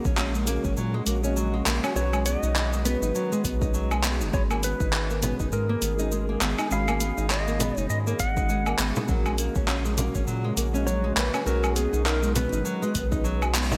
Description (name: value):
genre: organic downtempo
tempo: 101 BPM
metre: 4/4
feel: swing 58% on 16ths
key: G# minor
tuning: A4 = 440 Hz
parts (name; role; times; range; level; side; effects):
- felt-muted upright piano; accompaniment; 0.0-13.8 s; G#3 to B5; -37 LUFS; equal; sidechain pumping, digital delay
- warm analog pad; sustained chords; 0.0-13.8 s; C#3 to G#4; -38 LUFS; equal; chorus, sidechain pumping
- nylon-string guitar; arpeggios; 0.0-13.8 s; F#3 to D#4; -33 LUFS; equal; digital delay
- round analog bass; bass; 0.1-13.8 s; F#1 to A#2; -30 LUFS; equal; none
- deep house drum kit; drums; 0.1-13.8 s; cabasa, handclaps, hi-hat, woodblock; -31 LUFS; equal; gated reverb
- electronic kick drum; drums; 0.1-13.2 s; none; -31 LUFS; equal; none
- clean lap steel guitar; melody; 2.0-13.5 s; G#4 to F#5; -34 LUFS; equal; none
- frame drum; percussion; 5.2-13.8 s; none; -35 LUFS; equal; none
room: moderate lush hall reverb, RT60 2.8 s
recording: bright 1980s-style digital production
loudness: -25 LUFS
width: mono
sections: 0.0-13.8 A section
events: band accent 13.5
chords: 0.0 F#add9; 2.0 B6; 4.3 G#madd9; 9.1 F#add9; 11.5 B6